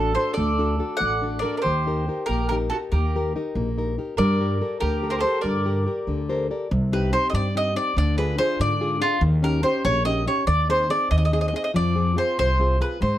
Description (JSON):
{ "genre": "italian folk, Italian serenade", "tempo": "95 BPM (dotted quarters)", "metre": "6/8", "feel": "straight", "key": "G harmonic minor, C minor from 6.7 s", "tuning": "A4 = 440 Hz", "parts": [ { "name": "mandolin", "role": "melody", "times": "0.0-13.2 s", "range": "F4 to F#5", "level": "-24 LUFS", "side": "equal", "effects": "none" }, { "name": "mandolin", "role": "second line", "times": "0.0-6.4 s", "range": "F#4 to D5", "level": "-29 LUFS", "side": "right 4 dB", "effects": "none" }, { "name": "nylon-string guitar", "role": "accompaniment", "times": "0.0-13.2 s", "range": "C3 to D5", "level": "-26 LUFS", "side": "left 3 dB", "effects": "none" }, { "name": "upright bass", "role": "bass", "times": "0.0-13.2 s", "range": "A1 to Ab2", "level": "-24 LUFS", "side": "equal", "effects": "none" } ], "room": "moderate studio reverb, RT60 0.6 s", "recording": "none", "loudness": "-20 LUFS", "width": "side -13 dB against mid", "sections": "0.0-6.7 A section; 6.7-13.2 B section", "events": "nylon-string guitar fill 6.1-6.7", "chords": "0.0 D; 1.6 Eb; 4.2 Gmadd9; 6.7 Cm; 8.0 Ddim; 9.2 Eb7; 10.5 Ab/Eb; 11.7 Fm" }